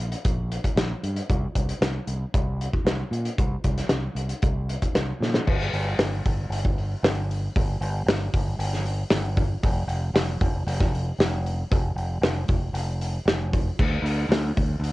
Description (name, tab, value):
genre	rock, shoegaze and dream pop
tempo	115 BPM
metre	4/4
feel	straight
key	G minor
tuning	A4 = 441 Hz
part	growling fingered electric bass	bass	0.0-14.9 s	F1 to Bb2	-26 LUFS	equal	overdrive
part	loose indie drum kit	drums	0.0-14.9 s	crash cymbal, hi-hat, kick drum, snare drum	-24 LUFS	equal	cassette tape
room	little or no reverb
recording	home recording on cassette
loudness	-22 LUFS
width	side -19 dB against mid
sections	0.0-5.5 A section; 5.5-14.9 B section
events	drum fill 5.2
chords	none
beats	0.25 0.77 | 1.29 1.81 2.34 2.86 | 3.38 3.90 4.42 4.95 | 5.47 5.99 6.51 7.03 | 7.55 8.07 8.59 9.11 | 9.63 10.15 10.67 11.19 | 11.71 12.22 12.74 13.26 | 13.78 14.29 14.81